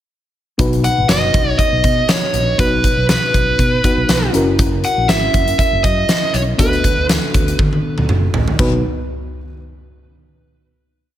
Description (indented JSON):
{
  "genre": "1980s-style pop",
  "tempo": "120 BPM",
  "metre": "4/4",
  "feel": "swing 55% on 16ths",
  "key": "B major",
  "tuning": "A4 = 440 Hz",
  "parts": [
    { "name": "FM electric piano with auto-pan", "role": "accompaniment", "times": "0.6-8.8 s", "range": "B1 to B4", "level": "-21 LUFS", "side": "left 1 dB", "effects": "none" },
    { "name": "mellow fretless electric bass", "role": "bass", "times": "0.6-8.8 s", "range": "F#1 to D3", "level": "-20 LUFS", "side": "equal", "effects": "none" },
    { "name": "huge arena drum kit", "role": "drums", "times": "0.6-8.7 s", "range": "crash cymbal, hi-hat, kick drum, snare drum, toms", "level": "-17 LUFS", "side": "equal", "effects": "gated reverb" },
    { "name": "dark smooth lead guitar", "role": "melody", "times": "0.8-7.1 s", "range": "B4 to F#5", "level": "-18 LUFS", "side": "right 1 dB", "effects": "overdrive, digital delay" }
  ],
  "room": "light reverb, small room ambience",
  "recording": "none",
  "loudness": "-13 LUFS",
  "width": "side -12 dB against mid",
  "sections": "0.6-8.6 verse; 8.6-10.6 final chord",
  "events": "drum fill 7.6-8.6",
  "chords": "0.6 B; 4.3 F#7; 6.6 D6; 8.6 N.C.",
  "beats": "| 0.59 1.09 1.59 2.09 | 2.59 3.09 3.59 4.09 | 4.59 5.09 5.59 6.09 | 6.59 7.09 7.59 8.09 | 8.59"
}